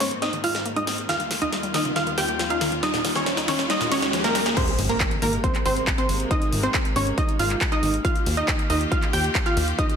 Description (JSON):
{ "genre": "uplifting trance", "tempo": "138 BPM", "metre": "4/4", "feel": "straight", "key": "Ab major", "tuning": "A4 = 437 Hz", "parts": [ { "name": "wide unison pluck", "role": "melody", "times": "0.0-10.0 s", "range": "Bb3 to G5", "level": "-26 LUFS", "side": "equal", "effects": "cassette tape, sidechain pumping, digital delay" }, { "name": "warm grand piano", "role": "second line", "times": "0.0-10.0 s", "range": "Bb5 to G6", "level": "-29 LUFS", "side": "right 1 dB", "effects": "sidechain pumping, low-pass filter, digital delay" }, { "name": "rich chamber string section", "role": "sustained chords", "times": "0.0-10.0 s", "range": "Eb2 to G4", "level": "-32 LUFS", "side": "left 1 dB", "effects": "sidechain pumping" }, { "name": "wide unison pluck", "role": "arpeggios", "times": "0.0-4.5 s", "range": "Eb2 to Eb4", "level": "-32 LUFS", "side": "left 3 dB", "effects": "sidechain pumping, digital delay" }, { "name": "big-room dance drum kit", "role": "drums", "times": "0.0-10.0 s", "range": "crash cymbal, handclaps, hi-hat, snare drum", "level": "-27 LUFS", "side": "equal", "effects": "high-pass filter on snare, high-pass filter on hats, high-pass filter on cymbals, high-pass filter on room" }, { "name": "riser, swell and impact", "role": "sound effects", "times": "0.1-6.3 s", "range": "none", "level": "-32 LUFS", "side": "right 1 dB", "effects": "none" }, { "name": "electronic kick drum", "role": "drums", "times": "4.6-9.9 s", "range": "none", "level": "-24 LUFS", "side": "equal", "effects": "none" }, { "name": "plucky analog bass", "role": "bass", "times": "4.8-9.7 s", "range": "Ab1 to Eb2", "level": "-26 LUFS", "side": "equal", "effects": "sidechain pumping" } ], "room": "moderate digital room reverb, RT60 1.0 s, digital ambience", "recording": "none", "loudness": "-20 LUFS", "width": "side -7 dB against mid", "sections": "0.0-4.6 A section; 4.6-10.0 B section", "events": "build-up 0.0-4.6; drum fill 0.0-4.6; filter sweep on synth pluck 0.0-4.6; filter sweep on synth arpeggio sound 0.0-4.6; riser 0.1-4.6; swell 3.7-4.6; drop 4.6-10.0; impact 4.6-6.3", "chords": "0.0 Abadd9; 1.1 Ebadd9; 4.6 Abadd9; 8.0 Ebadd9", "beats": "0.22 0.66 | 1.09 1.52 1.96 2.40 | 2.83 3.26 3.70 4.13 | 4.57 5.00 5.44 5.87 | 6.31 6.74 7.18 7.61 | 8.05 8.48 8.92 9.35 | 9.79" }